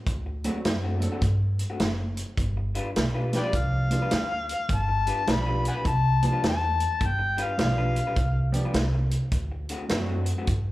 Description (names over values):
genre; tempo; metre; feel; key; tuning
electric blues shuffle; 104 BPM; 4/4; swing 64% on 8ths; unclear; A4 = 438 Hz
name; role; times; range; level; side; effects
upright bass; bass; 0.1-10.7 s; F#1 to G2; -26 LUFS; equal; none
vintage drum kit; drums; 0.1-10.7 s; hi-hat, kick drum, snare drum; -29 LUFS; equal; none
electric guitar through a small old amp; riff; 0.3-10.5 s; D3 to B4; -35 LUFS; left 2 dB; harmonic tremolo, slapback echo
dark concert grand piano; accompaniment; 0.4-10.2 s; F3 to A4; -33 LUFS; right 2 dB; slapback echo
overdriven harmonica; melody; 3.4-8.6 s; G4 to B5; -28 LUFS; left 3 dB; slapback echo
room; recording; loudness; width
small room ambience; live gig heard through the venue's PA, club ambience; -23 LUFS; side -16 dB against mid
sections
0.0-10.7 A section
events
none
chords
0.0 D7; 2.4 G7; 9.3 D7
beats
| 0.07 0.65 1.23 1.80 | 2.38 2.96 3.54 4.12 | 4.70 5.28 5.86 6.43 | 7.01 7.59 8.17 8.75 | 9.33 9.91 10.48